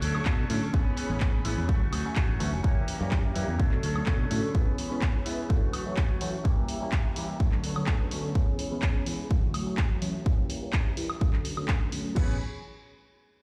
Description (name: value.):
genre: filtered disco house.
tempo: 126 BPM.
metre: 4/4.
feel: straight.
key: A major.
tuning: A4 = 443 Hz.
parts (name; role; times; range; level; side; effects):
funky polysynth comp; accompaniment; 0.0-12.3 s; D3 to C#5; -37 LUFS; equal; chorus, phaser, sidechain pumping, low-pass filter.
warm studio string section; sustained chords; 0.0-12.4 s; B3 to C#6; -44 LUFS; equal; sidechain pumping, low-pass filter.
electric guitar with an envelope filter; riff; 0.0-12.4 s; E3 to A4; -41 LUFS; equal; vintage 12-bit sampler grit, sidechain pumping, low-pass filter.
modern bright fingered electric bass; bass; 0.0-4.4, 12.2-12.4 s; F#1 to B2; -33 LUFS; equal; sidechain pumping, low-pass filter.
punchy analog drum machine; drums; 0.0-12.3 s; crash cymbal, handclaps, hi-hat, woodblock; -39 LUFS; equal; small room reverb.
tambourine; percussion; 0.0-12.1 s; none; -60 LUFS; equal; none.
electronic kick drum; drums; 0.3-12.3 s; none; -28 LUFS; equal; small room reverb.
room: digital ambience.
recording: played on a big sound system in a bare room, stone room reverb.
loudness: -28 LUFS.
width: mono.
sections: 0.0-12.2 A section; 12.2-13.4 B section.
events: filter sweep 0.0-12.2.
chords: 0.0 Bm9; 0.7 Amaj9; 1.7 Dmaj7; 2.6 F#7b9; 3.6 Bm9; 4.5 E6; 5.5 Dmaj7; 6.5 Edim7; 7.4 Bm9; 8.4 E6; 9.3 Dmaj7; 10.3 Edim7; 11.2 Bm9; 12.2 Amaj9.